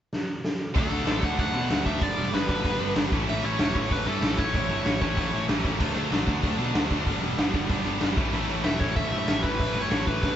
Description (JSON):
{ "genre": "punk rock", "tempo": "190 BPM", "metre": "4/4", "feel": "straight", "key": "A mixolydian", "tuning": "A4 = 439 Hz", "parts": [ { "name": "raw garage drum kit", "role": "drums", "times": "0.1-10.3 s", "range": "crash cymbal, hi-hat, kick drum, snare drum", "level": "-27 LUFS", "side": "equal", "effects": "none" }, { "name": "cranked stack guitar", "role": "riff", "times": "0.7-10.4 s", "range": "G2 to D4", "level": "-31 LUFS", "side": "right 8 dB", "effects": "overdrive" }, { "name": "tight distorted guitar", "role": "riff", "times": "0.7-10.4 s", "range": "G2 to E4", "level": "-31 LUFS", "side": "left 8 dB", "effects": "distortion" }, { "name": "biting lead guitar", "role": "melody", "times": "0.8-5.5, 8.6-10.4 s", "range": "A4 to F#5", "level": "-30 LUFS", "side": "equal", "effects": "overdrive" }, { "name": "fuzz picked electric bass", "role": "bass", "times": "0.8-10.4 s", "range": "E1 to B2", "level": "-31 LUFS", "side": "equal", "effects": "overdrive" } ], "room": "light reverb", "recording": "band playing live in one room, nothing above 7.8 kHz", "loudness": "-23 LUFS", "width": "side -10 dB against mid", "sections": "0.7-10.4 A section", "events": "drum fill 0.1-0.7", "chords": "0.0 N.C.; 0.7 D; 2.0 G; 3.1 A; 5.8 D; 7.1 G; 8.2 A", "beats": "0.12 0.43 | 0.75 1.06 1.38 1.70 | 2.01 2.33 2.64 2.96 | 3.27 3.59 3.90 4.22 | 4.54 4.85 5.17 5.48 | 5.80 6.11 6.43 6.74 | 7.06 7.38 7.69 8.01 | 8.32 8.64 8.96 9.28 | 9.59 9.91 10.23" }